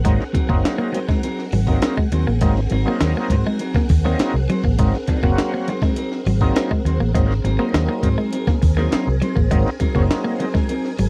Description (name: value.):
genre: funk.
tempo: 102 BPM.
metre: 4/4.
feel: straight.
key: unclear.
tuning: A4 = 445 Hz.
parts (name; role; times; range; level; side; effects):
string machine, violins; sustained chords; 0.0-11.1 s; C4 to Ab5; -32 LUFS; equal; ensemble chorus.
clean electric guitar; riff; 0.0-11.1 s; Gb3 to Bb3; -26 LUFS; equal; none.
overdriven tonewheel organ; stabs; 0.0-10.5 s; Gb3 to Gb4; -26 LUFS; equal; chorus vibrato, slow rotary speaker.
vintage muted fingered electric bass; bass; 0.0-11.1 s; Gb1 to Ab2; -22 LUFS; equal; none.
breakbeat sampler-style drum kit; drums; 0.0-11.1 s; hi-hat, kick drum, snare drum; -23 LUFS; equal; none.
clean electric guitar; accompaniment; 0.3-11.0 s; Gb3 to C5; -29 LUFS; equal; none.
room: little or no reverb.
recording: dry, close 1970s-style studio recording, vinyl crackle.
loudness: -19 LUFS.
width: mono.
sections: 0.0-11.1 A section.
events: none.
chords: 0.0 Ab9.